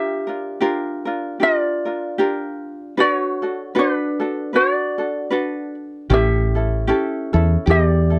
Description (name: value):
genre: Hawaiian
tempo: 76 BPM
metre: 4/4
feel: swing 57% on 8ths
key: unclear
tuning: A4 = 440 Hz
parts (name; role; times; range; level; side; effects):
- ukulele; melody; 0.0-8.2 s; D4 to E5; -23 LUFS; equal; none
- ukulele; accompaniment; 0.0-8.2 s; C#4 to B4; -25 LUFS; equal; none
- woody fretless electric bass; bass; 6.1-8.2 s; A1 to E2; -19 LUFS; equal; lush chorus
room: light reverb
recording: dry, close 1970s-style studio recording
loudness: -20 LUFS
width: mono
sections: 0.0-8.2 A section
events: none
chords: 0.0 Bb6; 3.0 Bm7; 6.1 A7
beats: 0.61 1.40 2.18 | 2.97 3.75 4.54 5.32 | 6.10 6.89 7.67